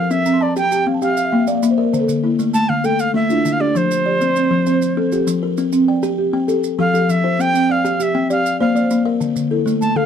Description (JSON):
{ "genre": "southern african traditional, mbira-style interlocking cycle", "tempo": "132 BPM (dotted quarters)", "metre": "12/8", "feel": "straight", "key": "C mixolydian", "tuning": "A4 = 441 Hz", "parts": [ { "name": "breathy bright jazz flute", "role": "melody", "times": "0.0-10.1 s", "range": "C5 to A5", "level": "-19 LUFS", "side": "right 2 dB", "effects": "none" }, { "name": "buzzing kalimba", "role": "arpeggios", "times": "0.0-10.1 s", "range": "D3 to A5", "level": "-18 LUFS", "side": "left 4 dB", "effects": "none" }, { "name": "buzzing marimba with soft mallets", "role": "arpeggios", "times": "0.0-10.1 s", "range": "D3 to C6", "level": "-20 LUFS", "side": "right 5 dB", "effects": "none" }, { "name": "maracas", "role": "percussion", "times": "0.1-10.0 s", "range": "none", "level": "-34 LUFS", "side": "right 6 dB", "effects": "none" } ], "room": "moderate small room reverb, RT60 0.5 s", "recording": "dark, warm production", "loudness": "-15 LUFS", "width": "side -8 dB against mid", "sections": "0.0-5.6 A section; 5.6-10.1 B section", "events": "marimba fill 0.1-1.9", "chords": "0.1 C; 1.0 Bb; 1.9 Dm; 3.8 F; 5.6 C5; 6.5 F; 7.4 C; 8.3 Bb; 9.2 Dm" }